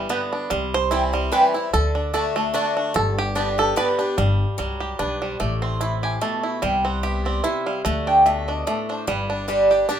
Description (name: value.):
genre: bluegrass.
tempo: 147 BPM.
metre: 3/4.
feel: swing 55% on 8ths.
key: G major.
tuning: A4 = 440 Hz.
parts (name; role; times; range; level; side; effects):
bluegrass banjo; melody; 0.0-10.0 s; G3 to C5; -24 LUFS; right 3 dB; none.
picked swing-style acoustic guitar; accompaniment; 0.0-10.0 s; G2 to G4; -26 LUFS; left 1 dB; none.
upright bass; bass; 0.0-9.8 s; G1 to D2; -26 LUFS; left 1 dB; none.
mandolin; stabs; 0.1-9.8 s; A3 to C6; -23 LUFS; right 1 dB; none.
room: moderate studio reverb, RT60 0.5 s.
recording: minimal, uncompressed stereo recording.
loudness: -19 LUFS.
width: side -9 dB against mid.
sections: 0.0-4.2 A section; 4.2-10.0 A section.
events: five-string banjo solo 0.0-4.2; mandolin solo 4.2-10.0.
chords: 0.0 G6; 0.5 C; 1.7 D; 3.0 Gadd9; 4.2 G; 5.4 Am; 6.6 C; 7.9 D5; 9.1 G5.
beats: 0.10 | 0.51 0.92 1.33 | 1.73 2.14 2.55 | 2.96 3.37 3.77 | 4.18 4.59 5.00 | 5.41 5.81 6.22 | 6.63 7.04 7.45 | 7.85 8.26 8.67 | 9.08 9.48 9.89.